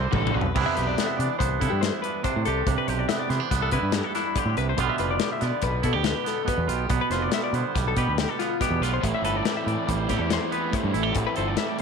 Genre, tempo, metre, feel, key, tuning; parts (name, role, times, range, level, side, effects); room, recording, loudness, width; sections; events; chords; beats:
math rock and midwest emo; 141 BPM; 5/4; straight; C major; A4 = 440 Hz
twangy electric guitar; accompaniment; 0.0-11.8 s; E2 to A4; -28 LUFS; right 13 dB
twelve-string electric guitar; arpeggios; 0.0-11.8 s; E4 to E5; -29 LUFS; left 12 dB; slapback echo
growling fingered electric bass; bass; 0.0-11.5 s; F1 to C3; -27 LUFS; right 1 dB; overdrive
raw garage guitar; riff; 0.1-0.4, 9.0-11.8 s; A2 to E4; -30 LUFS; equal; overdrive
modern studio drum kit; drums; 0.1-11.8 s; crash cymbal, hi-hat, kick drum, snare drum, toms; -29 LUFS; left 4 dB
light reverb, small room ambience; 1960s-style stereo with parts hard left and right; -22 LUFS; side -6 dB against mid
0.6-11.8 A section
drum fill 0.0-0.6
0.0 G7sus4; 0.6 Cmaj9; 4.8 G7; 9.0 Am9
0.13 | 0.55 0.97 1.39 1.82 2.24 | 2.66 3.09 3.51 3.94 4.36 | 4.79 5.21 5.63 6.06 6.48 | 6.91 7.33 7.76 8.18 8.61 | 9.03 9.46 9.88 10.31 10.73 | 11.16 11.58